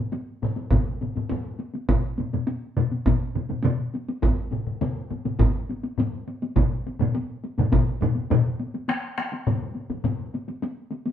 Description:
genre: japanese traditional, taiko drum ensemble.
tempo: 103 BPM.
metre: 4/4.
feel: straight.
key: none.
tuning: none.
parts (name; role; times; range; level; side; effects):
taiko ensemble; percussion; 0.1-11.1 s; none; -30 LUFS; left 2 dB; none.
taiko ensemble; percussion; 0.4-10.2 s; none; -28 LUFS; left 2 dB; none.
solo taiko drums; percussion; 0.7-7.9 s; none; -23 LUFS; right 1 dB; none.
taiko ensemble; percussion; 1.9-8.4 s; none; -24 LUFS; left 1 dB; none.
room: wet studio reverb, RT60 0.8 s.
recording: band playing live in one room.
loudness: -23 LUFS.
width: side -10 dB against mid.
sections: 0.0-8.9 A section; 8.9-11.1 B section.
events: none.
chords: none.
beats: 0.11 0.70 1.29 | 1.88 2.47 3.06 3.65 | 4.23 4.82 5.40 5.98 | 6.57 7.15 7.73 8.31 | 8.89 9.46 10.04 10.62.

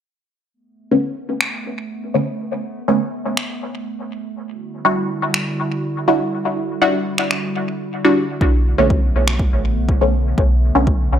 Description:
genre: dub techno.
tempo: 122 BPM.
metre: 4/4.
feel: straight.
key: B minor.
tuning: A4 = 436 Hz.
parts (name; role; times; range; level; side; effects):
warbly tape-like pad; sustained chords; 1.1-11.2 s; D3 to F#4; -26 LUFS; right 1 dB; chorus, built-in reverb, sidechain pumping.
filtered dub chord stab; stabs; 0.9-10.9 s; D3 to F#4; -18 LUFS; equal; chorus, phaser, sidechain pumping, dub echo.
electronic finger snaps; drums; 1.4-9.4 s; none; -22 LUFS; equal; overdrive, dub echo.
soft dub sub bass; bass; 8.4-11.2 s; A1 to B1; -19 LUFS; equal; sidechain pumping.
electronic kick drum; drums; 8.4-11.0 s; none; -18 LUFS; equal; none.
room: light reverb, digital ambience.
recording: dry, gritty hardware recording.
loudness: -16 LUFS.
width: side -9 dB against mid.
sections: 0.5-11.2 A section.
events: filter sweep on synth stab 0.5-11.2.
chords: 0.5 Bm9; 4.5 Em9; 8.4 Bm9.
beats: | 0.54 1.03 1.53 2.02 | 2.51 3.00 3.49 3.98 | 4.48 4.97 5.46 5.95 | 6.44 6.93 7.43 7.92 | 8.41 8.90 9.39 9.89 | 10.38 10.87.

